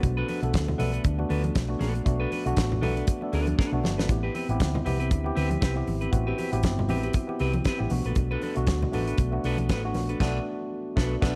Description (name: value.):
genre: disco.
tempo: 118 BPM.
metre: 4/4.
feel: swing 56% on 16ths.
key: unclear.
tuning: A4 = 440 Hz.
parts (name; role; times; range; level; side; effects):
clean electric guitar; accompaniment; 0.0-11.4 s; C4 to B4; -36 LUFS; equal; spring reverb.
tine electric piano; accompaniment; 0.0-11.4 s; A3 to F#5; -33 LUFS; equal; subtle chorus.
hollow-body short-scale fingered electric bass; bass; 0.0-11.4 s; G1 to D2; -30 LUFS; equal; none.
damped 70s drum kit; drums; 0.0-11.4 s; crash cymbal, hi-hat, kick drum, snare drum; -29 LUFS; equal; none.
congas; percussion; 0.0-10.1 s; none; -38 LUFS; equal; none.
room: light reverb, studio reverb.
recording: none.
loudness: -27 LUFS.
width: mono.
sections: 0.0-11.4 A section.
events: drum fill 3.6-4.1; band accent 10.2-11.4.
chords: 0.0 Bm7; 4.1 Am9; 7.9 Bm7.